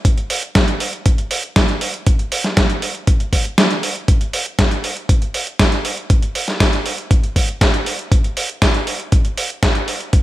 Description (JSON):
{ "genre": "italo disco", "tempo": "119 BPM", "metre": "4/4", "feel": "straight", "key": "none", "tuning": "none", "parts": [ { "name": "dusty soul sampler-style drum kit", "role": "drums", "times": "0.0-10.2 s", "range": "hi-hat, snare drum", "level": "-18 LUFS", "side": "right 1 dB", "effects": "overdrive, high-pass filter on hats, small room ambience, high-pass filter on snare, gated reverb" }, { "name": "electronic kick drum", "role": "drums", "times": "0.0-10.2 s", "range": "none", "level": "-15 LUFS", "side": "equal", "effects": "overdrive, small room ambience" } ], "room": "digital ambience", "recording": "none", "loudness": "-15 LUFS", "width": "side -16 dB against mid", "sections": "0.0-4.1 A section; 4.1-10.2 B section", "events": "kick drops out 3.6-4.1", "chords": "none" }